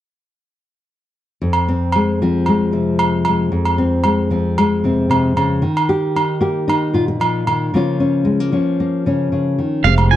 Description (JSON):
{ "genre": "highlife guitar band", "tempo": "114 BPM", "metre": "4/4", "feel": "straight", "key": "F minor", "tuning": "A4 = 439 Hz", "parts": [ { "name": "nylon-string guitar", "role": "accompaniment", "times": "1.4-10.2 s", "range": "F2 to G4", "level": "-16 LUFS", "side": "left 1 dB", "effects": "none" }, { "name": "agogo bells", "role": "percussion", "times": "1.5-10.1 s", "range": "none", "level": "-21 LUFS", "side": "right 3 dB", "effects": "none" }, { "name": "electric guitar at the edge of break-up", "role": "arpeggios", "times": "9.8-10.2 s", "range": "F5 to Ab5", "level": "-15 LUFS", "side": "right 12 dB", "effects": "slapback echo" }, { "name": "fingered electric bass", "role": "bass", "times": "9.8-10.2 s", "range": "F1", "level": "-12 LUFS", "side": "right 1 dB", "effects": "none" } ], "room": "studio reverb", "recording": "dry, close 1970s-style studio recording", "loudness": "-15 LUFS", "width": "side -12 dB against mid", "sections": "1.4-9.9 A section", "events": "none", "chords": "1.4 Fm; 5.6 Eb; 7.7 Bbm/Db" }